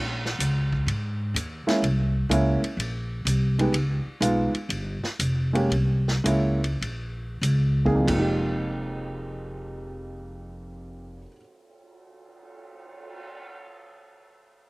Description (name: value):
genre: jazz, small-group swing and bop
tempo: 88-126 BPM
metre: 4/4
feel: swing 68% on 8ths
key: F minor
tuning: A4 = 440 Hz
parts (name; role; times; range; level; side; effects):
- upright bass; bass; 0.0-11.2 s; F1 to Ab2; -26 LUFS; equal; none
- vintage drum kit; drums; 0.3-13.4 s; crash cymbal, cymbal swell, hi-hat, kick drum, ride cymbal, snare drum; -33 LUFS; equal; none
- warm upright piano; accompaniment; 1.7-11.4 s; F2 to Ab4; -26 LUFS; right 1 dB; none
room: little or no reverb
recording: recorded outdoors, with no room sound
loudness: -22 LUFS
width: side -24 dB against mid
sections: 0.0-8.1 A section; 8.1-13.5 B section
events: slowing down 3.7-8.1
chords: 0.0 Bbm7; 1.8 C7b9b13; 3.7 Db9; 5.7 C7b9b13; 8.1 Fm11